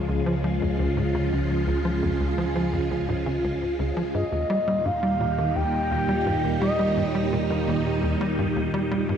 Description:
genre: ambient, sequencer-driven space music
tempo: 85 BPM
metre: 4/4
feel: straight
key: unclear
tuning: A4 = 442 Hz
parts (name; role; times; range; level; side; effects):
- phased string machine; sustained chords; 0.0-9.2 s; Bb2 to Ab4; -26 LUFS; right 1 dB; ensemble chorus, phaser, shimmer reverb
- analog drone; bass; 0.0-9.2 s; Db2 to Eb2; -30 LUFS; equal; chorus, tube saturation
- tight sequencer bass; riff; 0.1-9.1 s; Db2 to G3; -28 LUFS; equal; analog chorus, tape echo
- expressive synth lead; melody; 4.1-7.3 s; Eb5 to G5; -28 LUFS; equal; wide subtle chorus, shimmer reverb, tape echo
room: moderate plate reverb, RT60 3.5 s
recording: none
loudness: -22 LUFS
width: side -8 dB against mid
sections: 0.0-9.2 A section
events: none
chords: 0.0 Db; 4.1 Eb

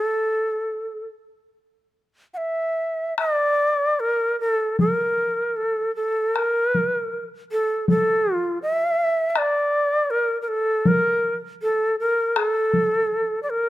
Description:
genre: japanese traditional, Japanese chamber music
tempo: 79 BPM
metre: 4/4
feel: uneven beats, rubato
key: unclear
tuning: A4 = 440 Hz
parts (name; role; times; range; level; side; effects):
- bright shakuhachi; melody; 0.0-13.7 s; A4 to F#5; -20 LUFS; equal; none
- solo taiko drums; percussion; 3.2-12.9 s; none; -23 LUFS; left 1 dB; none
room: light reverb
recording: close, detailed microphones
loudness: -20 LUFS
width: side -15 dB against mid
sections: 0.0-3.2 A section; 3.2-13.7 B section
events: none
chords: none

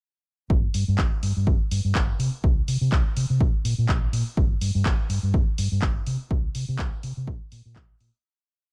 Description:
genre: filtered disco house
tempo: 124 BPM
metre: 4/4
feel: swing 55% on 16ths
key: G minor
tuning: A4 = 441 Hz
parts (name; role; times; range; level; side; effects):
- fingered electric bass; bass; 0.5-8.1 s; G1 to C3; -27 LUFS; equal; tube saturation, sidechain pumping, low-pass filter
- electronic kick drum; drums; 0.5-7.9 s; none; -25 LUFS; equal; none
- punchy analog drum machine; drums; 0.7-8.1 s; handclaps, hi-hat; -35 LUFS; equal; sidechain pumping on hats
room: little or no reverb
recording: none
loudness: -24 LUFS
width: mono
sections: 0.5-8.2 groove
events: filter sweep on fingered electric bass 0.5-8.2; fade-out 5.7-8.2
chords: none

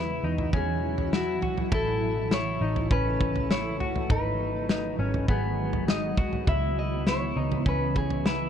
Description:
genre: dream pop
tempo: 101 BPM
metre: 4/4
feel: straight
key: C# minor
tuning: A4 = 440 Hz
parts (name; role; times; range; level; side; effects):
- clean electric guitar; melody; 0.0-8.5 s; F#4 to E5; -31 LUFS; left 1 dB; tape echo
- shimmering ambient pad; sustained chords; 0.0-8.5 s; B2 to A4; -32 LUFS; right 1 dB; chorus, built-in reverb
- semi-hollow electric guitar; arpeggios; 0.0-8.5 s; B3 to F#4; -33 LUFS; left 3 dB; lush chorus, tape echo
- vintage muted picked electric bass; bass; 0.0-8.5 s; F#1 to E2; -31 LUFS; equal; none
- loose indie drum kit; drums; 0.4-8.4 s; kick drum, snare drum, toms; -28 LUFS; equal; none
room: light reverb, small room ambience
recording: dark, warm production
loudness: -24 LUFS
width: side -8 dB against mid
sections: 0.0-8.5 A section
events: none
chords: 0.0 Esus2; 1.7 A; 4.1 G#m7; 6.5 C#m7

